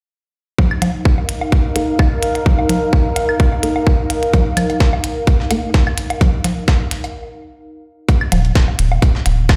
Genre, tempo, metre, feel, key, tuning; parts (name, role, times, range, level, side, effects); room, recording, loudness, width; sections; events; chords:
minimal techno; 128 BPM; 4/4; swing 54% on 16ths; A4 = 440 Hz
electronic kick drum; drums; 0.6-9.6 s; -15 LUFS; equal
congas and woodblock; percussion; 0.6-9.6 s; -25 LUFS; equal; tape echo
airy breathy pad; texture; 0.6-7.1 s; Eb4 to F5; -24 LUFS; equal; chorus, sidechain pumping
electronic hi-hat; drums; 0.8-9.4 s; -28 LUFS; equal
filtered dub chord stab; stabs; 1.8-5.6 s; Bb3 to Bb4; -26 LUFS; equal; phaser, ensemble chorus, tape echo
breakbeat sampler-style drum kit; drums; 4.3-9.6 s; hi-hat, snare drum; -29 LUFS; equal; high-pass filter on hats, high-pass filter on snare
rubbery square bass; bass; 8.3-9.6 s; Eb1; -17 LUFS; equal; sidechain pumping
light reverb; played on a big sound system in a bare room, large studio reverb; -16 LUFS; mono
0.6-8.1 A section; 8.1-9.6 B section
break 7.1-8.1
0.6 Eb5